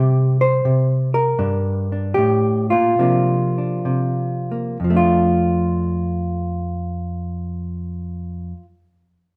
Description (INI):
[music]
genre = solo jazz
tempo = 61-86 BPM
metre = 4/4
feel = swing 69% on 8ths, rubato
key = F major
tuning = A4 = 440 Hz
[part]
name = hollow-body jazz guitar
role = solo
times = 0.0-8.7 s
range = F2 to C5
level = -20 LUFS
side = equal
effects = none
[sound]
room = wet large studio reverb, RT60 1.1 s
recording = band playing live in one room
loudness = -20 LUFS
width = mono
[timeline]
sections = 0.0-4.8 A section; 4.8-8.6 B section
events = slowing down 0.0-4.8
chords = 0.0 N.C.; 1.4 Gm; 3.0 C9sus4; 4.8 F6